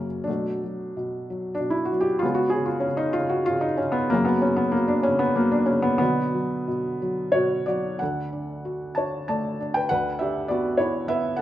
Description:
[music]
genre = classical, lyrical solo piano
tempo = 87-102 BPM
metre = 3/4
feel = rubato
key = B minor, D major from 8.0 s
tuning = A4 = 440 Hz
[part]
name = felt-muted upright piano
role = solo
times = 0.0-11.4 s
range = D2 to A5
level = -22 LUFS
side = equal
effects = none
[sound]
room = moderate recital hall reverb, RT60 1.4 s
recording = none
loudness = -22 LUFS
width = side -13 dB against mid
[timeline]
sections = 0.0-8.0 A section; 8.0-11.4 B section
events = none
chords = 0.3 Bm7; 2.2 C#5; 4.1 F#5; 6.0 Bm; 8.0 D; 9.9 Bm/D

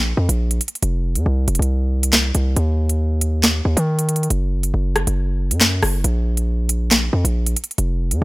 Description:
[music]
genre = hip hop, drill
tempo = 138 BPM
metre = 4/4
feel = half-time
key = unclear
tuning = A4 = 440 Hz
[part]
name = distorted 808-style bass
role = bass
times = 0.0-8.2 s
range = F1 to Eb3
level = -18 LUFS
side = equal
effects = distortion
[part]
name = drill drum kit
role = drums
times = 0.3-8.2 s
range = handclaps, hi-hat, rim click, snare drum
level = -18 LUFS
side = equal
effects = none
[sound]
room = little or no reverb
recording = none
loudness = -16 LUFS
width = side -22 dB against mid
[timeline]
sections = 0.0-8.2 A section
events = none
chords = none

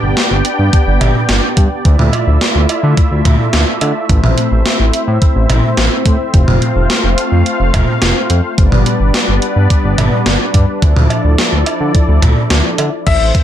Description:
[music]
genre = synth-pop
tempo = 107 BPM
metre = 4/4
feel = straight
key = unclear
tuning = A4 = 440 Hz
[part]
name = warm analog pad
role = sustained chords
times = 0.0-13.4 s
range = E3 to G5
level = -17 LUFS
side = equal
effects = chorus
[part]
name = smooth synth bass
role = bass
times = 0.0-13.3 s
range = F1 to D3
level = -13 LUFS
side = equal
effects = none
[part]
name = gated 80s digital drum machine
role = drums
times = 0.2-13.4 s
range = cowbell, crash cymbal, hi-hat, kick drum, snare drum, toms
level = -13 LUFS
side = equal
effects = gated reverb, gated reverb snare
[part]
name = warm baby grand piano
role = second line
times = 13.1-13.2 s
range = E5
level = -14 LUFS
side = left 8 dB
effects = ping-pong delay
[sound]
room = light reverb, digital ambience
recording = none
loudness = -10 LUFS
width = side -11 dB against mid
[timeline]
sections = 0.0-13.1 A section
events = none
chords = 0.0 G; 1.9 Dmadd9; 4.1 Am; 6.3 F; 8.6 G; 10.8 Dmadd9

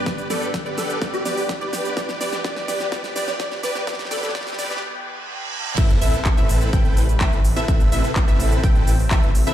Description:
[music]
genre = EDM, festival progressive house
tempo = 126 BPM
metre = 4/4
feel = straight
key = unclear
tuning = A4 = 440 Hz
[part]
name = plucky unison lead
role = melody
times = 0.0-4.8 s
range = G4 to D5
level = -30 LUFS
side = equal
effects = ensemble chorus, dub echo
[part]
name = lush unison pad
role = sustained chords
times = 0.0-9.5 s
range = E2 to F#5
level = -32 LUFS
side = left 1 dB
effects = chorus, phaser, sidechain pumping
[part]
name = wide unison pluck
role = arpeggios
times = 0.0-9.5 s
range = D5 to G5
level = -30 LUFS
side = equal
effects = sidechain pumping, dub echo
[part]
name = dense compressed supersaw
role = riff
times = 0.0-9.5 s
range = C4 to G5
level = -27 LUFS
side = right 1 dB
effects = sidechain pumping, dub echo
[part]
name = riser, reverse cymbal and sub drop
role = sound effects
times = 0.2-7.7 s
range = none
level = -32 LUFS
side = right 1 dB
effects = none
[part]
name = big-room dance drum kit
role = drums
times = 0.1-9.5 s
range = crash cymbal, handclaps, hi-hat, shaker, snare drum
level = -29 LUFS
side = equal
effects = none
[part]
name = electronic kick drum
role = drums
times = 0.1-9.2 s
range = none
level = -19 LUFS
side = equal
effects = none
[part]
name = wide detuned saw bass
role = bass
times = 5.8-9.4 s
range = A1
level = -21 LUFS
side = equal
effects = chorus, sidechain pumping
[sound]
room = light reverb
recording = played on a big sound system in a bare room, large studio reverb, high-pass filter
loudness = -18 LUFS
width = side -12 dB against mid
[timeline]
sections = 0.0-5.8 A section; 5.8-9.5 B section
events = build-up 0.0-5.8; drum fill 0.0-4.8; filter sweep on analog synth pad 0.0-5.8; filter sweep 0.0-5.8; break 4.8-5.8; reverse cymbal 4.8-5.8; drop 5.8-9.5; impact 5.8-7.7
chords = 0.0 G; 2.0 Em; 5.8 Amadd9

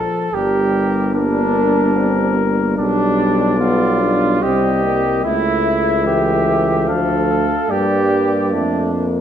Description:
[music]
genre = classical, brass quintet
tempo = 73 BPM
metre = 3/4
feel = rubato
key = unclear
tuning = A4 = 440 Hz
[part]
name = mellow trumpet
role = melody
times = 0.0-9.1 s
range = Bb4 to F5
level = -23 LUFS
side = left 7 dB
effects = none
[part]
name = mellow trumpet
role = second line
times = 0.0-9.1 s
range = D4 to A4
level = -20 LUFS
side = right 4 dB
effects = none
[part]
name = mellow French horn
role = accompaniment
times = 0.0-9.2 s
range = E3 to D4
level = -22 LUFS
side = left 3 dB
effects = none
[part]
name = mellow trombone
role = accompaniment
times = 0.0-9.1 s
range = G3 to Bb3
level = -24 LUFS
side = right 2 dB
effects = none
[part]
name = bright bass trombone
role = bass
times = 0.0-9.2 s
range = G1 to G2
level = -19 LUFS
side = equal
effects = none
[sound]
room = wet recital hall reverb, RT60 1.5 s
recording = none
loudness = -14 LUFS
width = side -9 dB against mid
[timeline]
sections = 0.0-9.2 A section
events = none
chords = 0.3 Gm; 2.8 G7/B; 4.4 Cm; 5.2 A7/C#; 6.9 Dm; 7.7 Gm; 8.5 Bb/F

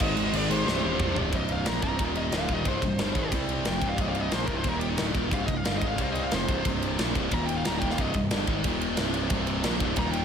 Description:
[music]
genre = heavy metal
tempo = 180 BPM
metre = 4/4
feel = straight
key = C minor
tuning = A4 = 445 Hz
[part]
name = high-gain lead guitar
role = melody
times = 0.0-10.2 s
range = Eb4 to Bb5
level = -33 LUFS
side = left 1 dB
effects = distortion, slapback echo, tape echo
[part]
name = high-gain lead guitar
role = second line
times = 0.0-1.1 s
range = G4 to C5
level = -38 LUFS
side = right 1 dB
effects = distortion
[part]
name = heavy high-gain guitar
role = riff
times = 0.0-10.2 s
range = C2 to C4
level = -32 LUFS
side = right 10 dB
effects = distortion
[part]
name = high-gain distorted guitar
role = riff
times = 0.0-10.2 s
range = C2 to C4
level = -32 LUFS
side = left 10 dB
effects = distortion
[part]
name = high-gain distorted guitar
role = riff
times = 0.0-1.3 s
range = C2 to Ab3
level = -35 LUFS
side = equal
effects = none
[part]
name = fuzz picked electric bass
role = bass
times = 0.0-10.2 s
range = C1 to C2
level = -32 LUFS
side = equal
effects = overdrive
[part]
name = tight metal drum kit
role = drums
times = 0.0-10.2 s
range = crash cymbal, kick drum, ride cymbal, snare drum, toms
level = -30 LUFS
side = equal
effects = none
[sound]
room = moderate concert hall reverb, RT60 2.0 s, studio ambience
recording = big arena sound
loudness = -24 LUFS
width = side -7 dB against mid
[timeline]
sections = 0.0-1.3 A section; 1.3-10.2 B section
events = half time 0.0-1.3; drum fill 0.7-1.3; lead electric guitar solo 1.3-10.2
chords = 0.0 Ab; 0.7 Cm; 1.3 C5; 2.0 Eb5; 2.3 Cm; 4.7 Eb5; 5.0 Cm; 7.3 Eb5; 7.7 Cm; 8.7 Eb5; 9.0 C5

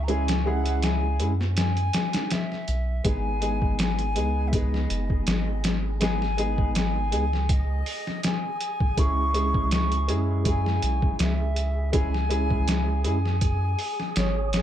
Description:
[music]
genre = trip hop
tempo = 81 BPM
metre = 4/4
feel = swing 54% on 16ths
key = unclear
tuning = A4 = 439 Hz
[part]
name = baroque flute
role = melody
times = 0.0-14.6 s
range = C#5 to C#6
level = -31 LUFS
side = left 2 dB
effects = tape echo
[part]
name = dark upright piano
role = accompaniment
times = 0.0-13.2 s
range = G#3 to G#4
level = -30 LUFS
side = right 1 dB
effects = harmonic tremolo, tape echo
[part]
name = soft dub sub bass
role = bass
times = 0.0-14.6 s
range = F#1 to F#2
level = -26 LUFS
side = equal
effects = none
[part]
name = trip hop sampler-style drum kit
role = drums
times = 0.1-14.6 s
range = hi-hat, kick drum, snare drum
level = -26 LUFS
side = left 1 dB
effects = overdrive
[part]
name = wind-like tuned noise texture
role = texture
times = 3.7-14.6 s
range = G#4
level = -40 LUFS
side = right 3 dB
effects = built-in reverb
[sound]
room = digital ambience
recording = none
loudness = -22 LUFS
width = side -11 dB against mid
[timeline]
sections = 0.0-14.6 A section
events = kick drops out 1.6-3.0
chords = 0.0 C#m; 3.0 G#m; 9.0 C#m

